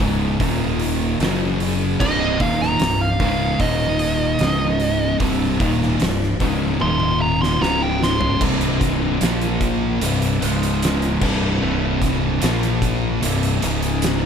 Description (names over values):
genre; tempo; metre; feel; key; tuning
stoner and doom metal; 75 BPM; 4/4; straight; C minor; A4 = 439 Hz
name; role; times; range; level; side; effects
string machine, violins; sustained chords; 0.0-8.4 s; Db3 to D5; -34 LUFS; left 1 dB; none
overdriven electric guitar; riff; 0.0-14.3 s; C2 to Bb3; -27 LUFS; left 1 dB; none
thick fuzz guitar; riff; 0.0-14.3 s; C2 to Bb3; -24 LUFS; left 9 dB; distortion
thick fuzz guitar; riff; 0.0-14.3 s; C2 to Bb3; -24 LUFS; right 9 dB; distortion
growling fingered electric bass; bass; 0.0-14.3 s; C1 to Bb1; -24 LUFS; equal; overdrive
oversized low-tuned drum kit; drums; 0.0-14.2 s; crash cymbal, hi-hat, kick drum, snare drum, toms; -24 LUFS; equal; none
fuzz lead guitar; melody; 2.0-8.4 s; Eb5 to C6; -23 LUFS; right 2 dB; wah, distortion, ping-pong delay
room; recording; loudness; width
light reverb, small room ambience; none; -17 LUFS; side -7 dB against mid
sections
0.0-8.4 A section; 8.4-14.3 B section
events
lead electric guitar solo 0.0-8.4; drum fill 6.8-8.4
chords
0.4 Eb5; 1.2 F#5; 2.0 Cm; 3.6 Eb5; 4.4 Db5; 5.2 Cm; 6.8 Eb5; 7.6 Db5; 8.4 C5; 9.2 Bb5; 10.0 C5; 10.4 Db5; 11.2 C5; 12.4 Bb5; 13.2 C5; 13.6 Db5